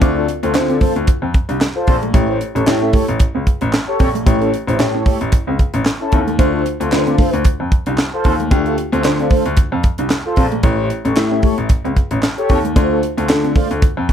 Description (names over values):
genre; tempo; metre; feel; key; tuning
early-eighties boogie funk; 113 BPM; 4/4; swing 56% on 16ths; unclear; A4 = 440 Hz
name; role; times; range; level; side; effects
FM electric piano with soft pad layer; accompaniment; 0.0-13.8 s; A3 to E5; -20 LUFS; left 1 dB; chorus
mellow electric guitar; riff; 0.0-14.1 s; A3 to D4; -23 LUFS; right 2 dB; analog chorus
clear grand piano; bass; 0.0-14.1 s; A1 to D3; -20 LUFS; left 2 dB; none
tight funk drum kit; drums; 0.0-14.1 s; handclaps, hi-hat, kick drum, snare drum; -15 LUFS; equal; none
mellow synth brass; second line; 0.2-13.7 s; C#4 to F5; -21 LUFS; equal; chorus
room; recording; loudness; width
light reverb; none; -13 LUFS; side -9 dB against mid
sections
0.0-14.1 A section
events
none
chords
0.0 Dm7; 2.1 A7; 6.4 Dm7; 10.6 A7; 12.8 Dm7